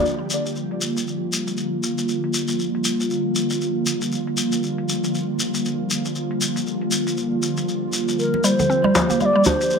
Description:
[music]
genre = afro house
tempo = 118 BPM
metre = 4/4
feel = swing 59% on 16ths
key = G minor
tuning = A4 = 441 Hz
[part]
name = ethereal airy pad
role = sustained chords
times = 0.0-9.8 s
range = D3 to G4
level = -22 LUFS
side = equal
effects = ensemble chorus, built-in reverb
[part]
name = shekere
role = percussion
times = 0.1-9.8 s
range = none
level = -26 LUFS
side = left 3 dB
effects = none
[part]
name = electronic hi-hat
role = drums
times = 0.2-9.7 s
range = none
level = -43 LUFS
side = left 1 dB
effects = low-pass filter on hats, low-pass filter on toms, low-pass filter on snare
[part]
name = mellow bass bansuri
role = melody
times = 8.2-9.8 s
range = Bb4 to F5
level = -19 LUFS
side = equal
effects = none
[part]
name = congas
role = percussion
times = 8.3-9.6 s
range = none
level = -29 LUFS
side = right 2 dB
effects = none
[part]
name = mallet-like synth pluck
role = arpeggios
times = 8.4-9.6 s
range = D3 to D4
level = -21 LUFS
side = right 1 dB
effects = chorus, digital delay
[part]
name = djembe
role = percussion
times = 8.9-9.6 s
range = none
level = -24 LUFS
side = left 2 dB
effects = none
[sound]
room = wet digital room reverb, RT60 1.3 s, small room ambience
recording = none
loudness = -19 LUFS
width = side -6 dB against mid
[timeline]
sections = 0.1-9.8 A section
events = none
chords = 0.1 Gm7

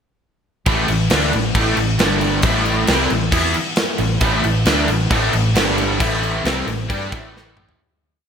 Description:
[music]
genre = hard rock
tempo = 135 BPM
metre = 4/4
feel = straight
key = A minor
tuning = A4 = 440 Hz
[part]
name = crunchy overdriven guitar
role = riff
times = 0.7-7.8 s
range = G2 to G4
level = -21 LUFS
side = left 6 dB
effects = ensemble chorus
[part]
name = crunchy overdriven guitar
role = riff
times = 0.7-7.8 s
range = G2 to G4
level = -21 LUFS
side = right 8 dB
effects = ensemble chorus
[part]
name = hollow-body short-scale fingered electric bass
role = bass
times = 0.7-7.8 s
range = G1 to G2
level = -23 LUFS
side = equal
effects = none
[part]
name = big rock drum kit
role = drums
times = 0.7-7.8 s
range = crash cymbal, kick drum, snare drum, toms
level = -19 LUFS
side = equal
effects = gated reverb
[sound]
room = moderate lush hall reverb, RT60 1.7 s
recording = bright 1980s-style digital production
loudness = -15 LUFS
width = side -7 dB against mid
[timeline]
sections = 0.7-7.8 riff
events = fade-out 6.0-7.8; drum fill 7.3-7.8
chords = 0.7 A5; 2.0 G5; 2.4 Am; 5.6 G5; 6.0 Am

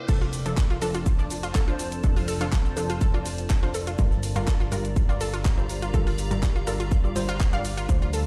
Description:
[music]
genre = progressive house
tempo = 123 BPM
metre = 4/4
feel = straight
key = F major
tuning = A4 = 440 Hz
[part]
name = evolving wavetable pad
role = sustained chords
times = 0.0-8.3 s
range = D3 to C5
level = -38 LUFS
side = equal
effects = phaser, built-in reverb, sidechain pumping
[part]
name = analog pluck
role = arpeggios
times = 0.1-8.2 s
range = F4 to F5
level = -36 LUFS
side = equal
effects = chorus, sidechain pumping, digital delay
[part]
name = unison pluck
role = stabs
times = 0.1-8.2 s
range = G2 to D5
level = -34 LUFS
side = equal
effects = cassette tape, sidechain pumping, digital delay
[part]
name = plucky analog bass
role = bass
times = 0.1-8.3 s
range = F1 to D2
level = -33 LUFS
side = equal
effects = sidechain pumping, high-pass filter
[part]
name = breakbeat sampler-style drum kit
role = drums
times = 0.1-8.3 s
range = hi-hat, shaker, snare drum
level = -47 LUFS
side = equal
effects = none
[part]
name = electronic kick drum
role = drums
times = 0.1-8.0 s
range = none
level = -25 LUFS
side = equal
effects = high-pass filter on kick, high-pass filter on room
[part]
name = house drum kit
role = drums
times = 0.1-8.2 s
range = crash cymbal, handclaps, hi-hat, shaker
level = -39 LUFS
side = equal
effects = high-pass filter on snare, high-pass filter on hats, high-pass filter on perc, high-pass filter on cymbals, high-pass filter on room
[sound]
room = little or no reverb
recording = played on a big sound system in a bare room, stone room reverb, lossy compression artefacts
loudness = -25 LUFS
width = mono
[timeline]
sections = 0.1-8.3 A section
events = drop 0.1-8.3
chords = 0.1 F6; 4.0 Gm7

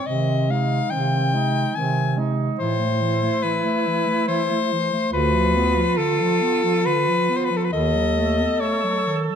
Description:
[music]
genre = classical, lyrical piece for single-reed quartet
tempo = 70 BPM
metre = 3/4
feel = rubato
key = unclear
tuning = A4 = 445 Hz
[part]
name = bright soprano saxophone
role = melody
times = 0.0-9.2 s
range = A4 to Ab5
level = -22 LUFS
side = left 6 dB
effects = none
[part]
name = clear alto saxophone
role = second line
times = 0.0-9.4 s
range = C4 to A4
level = -26 LUFS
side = right 11 dB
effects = none
[part]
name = mellow clarinet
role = accompaniment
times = 0.1-9.4 s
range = D3 to B3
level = -26 LUFS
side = left 1 dB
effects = none
[part]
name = mellow bass clarinet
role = bass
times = 0.1-8.4 s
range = D2 to C3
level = -24 LUFS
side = right 2 dB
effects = none
[sound]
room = moderate recital hall reverb, RT60 1.7 s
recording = none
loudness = -18 LUFS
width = side -8 dB against mid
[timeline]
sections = 0.0-9.4 A section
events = none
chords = 0.1 Ab/C; 2.6 Am; 5.1 Bdim/D; 7.7 B7/D#

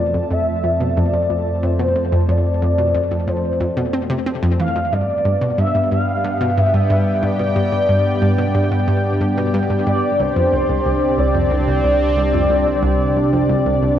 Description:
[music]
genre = ambient, sequencer-driven space music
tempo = 91 BPM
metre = 4/4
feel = straight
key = F lydian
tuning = A4 = 440 Hz
[part]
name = expressive portamento lead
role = melody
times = 0.0-14.0 s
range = C5 to F5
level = -20 LUFS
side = left 1 dB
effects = ensemble chorus, ping-pong delay
[part]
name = sweeping resonant pad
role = sustained chords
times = 0.0-14.0 s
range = A3 to A5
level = -22 LUFS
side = equal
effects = chorus
[part]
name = analog pluck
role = riff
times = 0.0-14.0 s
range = C2 to C4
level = -20 LUFS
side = equal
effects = chorus, ping-pong delay
[part]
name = analog drone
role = bass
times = 0.0-14.0 s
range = C2 to G2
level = -22 LUFS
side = equal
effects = chorus
[sound]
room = wet plate reverb, RT60 2.6 s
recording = worn, warbling old tape, cassette tape, warbly pitch drift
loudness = -15 LUFS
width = side -10 dB against mid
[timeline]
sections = 0.0-14.0 A section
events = fade-in on analog synth pad 0.0-14.0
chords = 0.0 F; 4.9 G; 10.2 Csus2

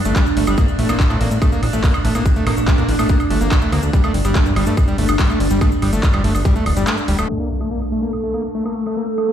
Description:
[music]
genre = psychedelic trance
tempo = 143 BPM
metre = 4/4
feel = straight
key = unclear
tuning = A4 = 441 Hz
[part]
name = evolving wavetable pad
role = sustained chords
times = 0.0-9.3 s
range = A3 to A4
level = -22 LUFS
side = right 2 dB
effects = chorus, built-in reverb, phaser, sidechain pumping
[part]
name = plucky analog bass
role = bass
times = 0.0-7.3 s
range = D1 to A2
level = -18 LUFS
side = equal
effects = none
[part]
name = overdriven acid bass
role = riff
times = 0.1-9.3 s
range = G3 to Bb3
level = -23 LUFS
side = left 1 dB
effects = distortion, auto-pan, sidechain pumping, ping-pong delay
[part]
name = big-room dance drum kit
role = drums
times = 0.1-9.3 s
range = handclaps, hi-hat, woodblock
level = -25 LUFS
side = right 1 dB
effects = overdrive, low-pass filter on hats, low-pass filter on perc, low-pass filter on snare
[part]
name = cabasa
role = percussion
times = 0.1-7.3 s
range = none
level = -39 LUFS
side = left 5 dB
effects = none
[part]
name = electronic kick drum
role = drums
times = 0.2-6.5 s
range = none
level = -15 LUFS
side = equal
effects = none
[part]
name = metallic wobble bass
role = second line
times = 0.9-3.0 s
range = A3 to D4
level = -32 LUFS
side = right 3 dB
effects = none
[part]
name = impact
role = sound effects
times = 7.3-9.0 s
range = none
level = -27 LUFS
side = equal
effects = none
[sound]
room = light reverb, digital ambience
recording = played on a big sound system in a bare room, stone room reverb, low-pass filter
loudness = -15 LUFS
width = side -10 dB against mid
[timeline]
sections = 0.0-7.3 A section; 7.3-9.3 B section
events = kick drops out 6.9-7.3; impact 7.3-9.0; filter sweep on drum 7.3-9.3; filter sweep on acid bass 7.3-9.3; filter sweep 7.3-9.3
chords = 0.0 G5; 0.6 Gmadd9 (rootless); 3.9 G5; 7.3 N.C.

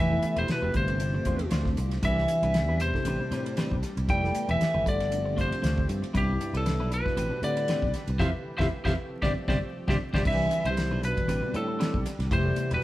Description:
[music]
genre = electric jazz fusion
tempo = 117 BPM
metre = 4/4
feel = swing 55% on 16ths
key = G mixolydian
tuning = A4 = 440 Hz
[part]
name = lightly driven lead guitar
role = melody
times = 0.0-12.8 s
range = G4 to G5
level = -30 LUFS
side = equal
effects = none
[part]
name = mellow bass clarinet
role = second line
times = 0.0-12.8 s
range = G2 to G3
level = -33 LUFS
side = equal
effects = none
[part]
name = tine electric piano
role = accompaniment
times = 0.0-12.8 s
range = E3 to A4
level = -37 LUFS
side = equal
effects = overdrive, medium stereo tremolo, phaser
[part]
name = sweeping resonant pad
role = sustained chords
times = 0.0-12.8 s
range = C3 to B4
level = -40 LUFS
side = equal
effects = chorus
[part]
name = clean electric guitar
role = stabs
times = 0.0-12.8 s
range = G3 to C5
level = -38 LUFS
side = left 1 dB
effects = none
[part]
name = sustaining fretless electric bass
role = bass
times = 0.0-12.8 s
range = E1 to A2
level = -30 LUFS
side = equal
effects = none
[part]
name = damped 70s drum kit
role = drums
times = 0.2-12.8 s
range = crash cymbal, hi-hat, kick drum, ride cymbal, snare drum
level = -32 LUFS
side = equal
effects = none
[sound]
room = moderate stone room reverb, RT60 1.1 s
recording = band playing live in one room, vinyl crackle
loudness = -25 LUFS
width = side -16 dB against mid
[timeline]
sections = 0.0-10.3 A section; 10.3-12.8 A section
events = drum fill 8.2-10.3; band accent 8.2-10.3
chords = 0.0 Fmaj9#11; 0.8 G9sus4; 2.0 Cmaj9; 3.1 Am11; 4.1 Fmaj9#11; 4.9 G9sus4; 6.2 Cmaj9; 7.2 Am11; 8.2 Fmaj9#11; 9.0 G9sus4; 10.3 Cmaj9; 11.3 Am11; 12.3 Fmaj9#11

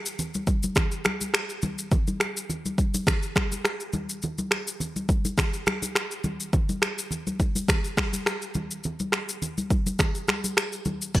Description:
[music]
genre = afrobeats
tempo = 104 BPM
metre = 4/4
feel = swing 55% on 16ths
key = none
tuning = none
[part]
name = deep house drum kit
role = drums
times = 0.1-11.2 s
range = crash cymbal, finger snaps, kick drum, rim click, shaker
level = -25 LUFS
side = equal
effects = overdrive
[part]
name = congas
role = percussion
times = 0.2-11.2 s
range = none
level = -31 LUFS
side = left 1 dB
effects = none
[sound]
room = light reverb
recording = bright 1980s-style digital production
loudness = -24 LUFS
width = side -16 dB against mid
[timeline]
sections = 0.0-11.1 A section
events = none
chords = none

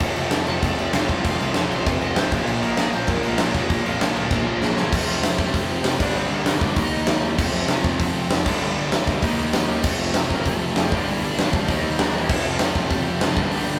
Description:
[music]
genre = punk rock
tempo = 195 BPM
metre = 4/4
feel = straight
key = F major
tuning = A4 = 440 Hz
[part]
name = high-gain distorted guitar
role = riff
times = 0.0-13.8 s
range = F2 to Eb4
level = -31 LUFS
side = equal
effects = none
[part]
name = sludgy distorted guitar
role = riff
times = 0.0-13.8 s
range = F2 to Eb4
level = -32 LUFS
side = equal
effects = none
[part]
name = tight distorted guitar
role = riff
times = 0.0-13.8 s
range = F2 to Eb4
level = -30 LUFS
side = equal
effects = distortion
[part]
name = fuzz picked electric bass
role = bass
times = 0.0-13.8 s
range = F1 to F2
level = -32 LUFS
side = equal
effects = overdrive
[part]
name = big rock drum kit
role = drums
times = 0.0-13.6 s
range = crash cymbal, hi-hat, kick drum, snare drum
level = -24 LUFS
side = equal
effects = none
[part]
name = smooth overdriven lead guitar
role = melody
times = 0.5-7.2, 9.6-13.8 s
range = E3 to C6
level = -32 LUFS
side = equal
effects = none
[sound]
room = moderate studio reverb, RT60 0.6 s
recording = rough rehearsal-room recording, tube saturation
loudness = -21 LUFS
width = mono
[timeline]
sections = 0.0-4.9 A section; 4.9-13.8 B section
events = drum fill 4.3-4.9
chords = 0.0 F; 2.3 Bb; 4.9 F; 6.0 Gm; 6.8 Eb; 7.4 F; 8.5 Gm; 9.2 Eb; 9.8 F; 10.9 Gm; 11.7 Eb; 12.3 F

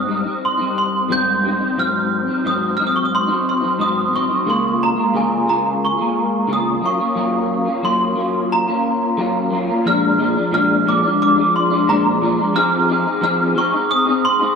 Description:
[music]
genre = indie pop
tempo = 89 BPM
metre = 4/4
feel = straight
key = unclear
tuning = A4 = 438 Hz
[part]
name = glockenspiel with soft plastic mallets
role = melody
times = 0.0-14.4 s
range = Ab5 to G6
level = -18 LUFS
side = right 2 dB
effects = ensemble chorus, slapback echo
[part]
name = electric guitar through a small old amp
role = accompaniment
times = 0.0-14.6 s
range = Ab2 to Ab4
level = -18 LUFS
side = left 2 dB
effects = ensemble chorus, warbly pitch drift
[sound]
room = light reverb, studio reverb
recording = none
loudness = -15 LUFS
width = side -6 dB against mid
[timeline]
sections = 0.0-9.9 A section; 9.9-14.6 B section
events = none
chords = 0.0 Abmaj7; 1.8 Ab7; 4.5 Db6; 6.8 Gbmaj7; 9.9 Bb7; 12.5 Fm7

